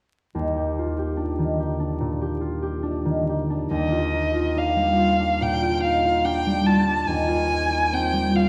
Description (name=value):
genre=classical, impressionist duo for violin and harp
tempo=71 BPM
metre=4/4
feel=rubato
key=Eb major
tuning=A4 = 440 Hz
part: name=concert harp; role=accompaniment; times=0.3-8.5 s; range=Eb2 to G4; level=-24 LUFS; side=equal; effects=none
part: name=dark violin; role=melody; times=3.7-8.5 s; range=Eb5 to A5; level=-25 LUFS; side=equal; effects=none
room=wet recital hall reverb, RT60 1.4 s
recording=heard from further back in the room, vinyl crackle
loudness=-23 LUFS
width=mono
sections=0.3-3.7 A section; 3.7-8.5 B section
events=none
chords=0.3 Ebmaj9; 7.1 Fm9/Eb